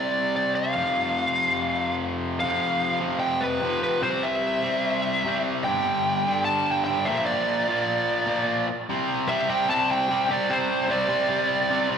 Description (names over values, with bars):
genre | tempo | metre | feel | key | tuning
rock | 148 BPM | 4/4 | straight | unclear | A4 = 440 Hz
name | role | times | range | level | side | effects
fuzz lead guitar | melody | 0.0-11.9 s | B4 to A5 | -24 LUFS | right 1 dB | distortion
distorted electric guitar | riff | 0.0-12.0 s | F2 to C4 | -25 LUFS | left 1 dB | distortion, slapback echo
room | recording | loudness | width
light reverb, digital ambience | live gig heard through the venue's PA, recital hall reverb | -22 LUFS | side -7 dB against mid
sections
0.0-2.4 A section; 2.4-8.9 B section; 8.9-12.0 C section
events
none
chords
0.0 Csus2; 0.8 F5; 4.0 C; 5.7 G5; 7.1 Bb; 8.9 Csus2